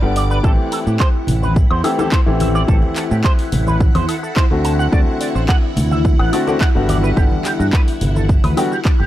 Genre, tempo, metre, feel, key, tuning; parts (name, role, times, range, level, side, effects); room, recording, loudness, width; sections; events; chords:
nu-disco, nu disco; 107 BPM; 4/4; straight; A dorian; A4 = 440 Hz
clear grand piano; accompaniment; 0.0-8.7 s; D3 to F#5; -22 LUFS; left 2 dB; sidechain pumping, analog delay
string machine, full ensemble; sustained chords; 0.0-9.1 s; E4 to D6; -25 LUFS; left 1 dB; phaser, ensemble chorus, sidechain pumping
modern bright fingered electric bass; bass; 0.0-9.1 s; G1 to A2; -18 LUFS; equal; sidechain pumping
electric guitar with an envelope filter; riff; 0.2-9.1 s; F#4 to A5; -24 LUFS; right 4 dB; analog chorus, analog delay
house drum kit; drums; 0.2-9.0 s; handclaps, hi-hat, shaker, woodblock; -27 LUFS; left 1 dB; overdrive, studio reverb
electronic kick drum; drums; 0.4-9.0 s; -14 LUFS; equal; overdrive, studio reverb
congas; percussion; 1.3-8.5 s; -23 LUFS; left 2 dB
digital ambience; dry, gritty hardware recording; -13 LUFS; side -13 dB against mid
0.0-9.1 A section
0.4 Am7; 4.6 D7; 6.9 Gmaj7